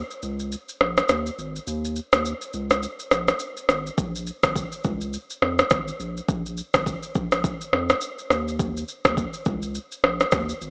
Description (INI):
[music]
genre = afrobeats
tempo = 104 BPM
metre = 4/4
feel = swing 58% on 16ths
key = unclear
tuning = A4 = 440 Hz
[part]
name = round analog bass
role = bass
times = 0.0-10.7 s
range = Ab1 to F2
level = -29 LUFS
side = equal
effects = none
[part]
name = afro-pop drum kit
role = drums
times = 0.1-10.7 s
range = kick drum, rim click, shaker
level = -22 LUFS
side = equal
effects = overdrive
[sound]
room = moderate plate reverb, RT60 2.5 s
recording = small speaker sound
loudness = -22 LUFS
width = side -37 dB against mid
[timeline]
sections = 0.0-10.7 A section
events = break 0.0-4.0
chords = none